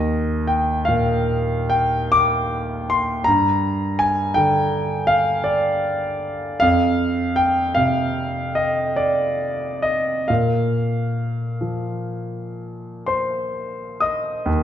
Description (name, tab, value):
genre	classical, impressionist solo piano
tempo	38-56 BPM (dotted quarters)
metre	9/8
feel	rubato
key	unclear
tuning	A4 = 440 Hz
part	clear concert grand piano	solo	0.0-14.6 s	Eb2 to Eb6	-18 LUFS	equal	none
room	wet recital hall reverb, RT60 1.3 s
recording	dark, warm production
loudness	-18 LUFS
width	side -10 dB against mid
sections	0.0-14.5 A section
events	none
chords	0.0 Ebsus2; 3.3 Gm; 6.6 F5; 10.3 Bbsus24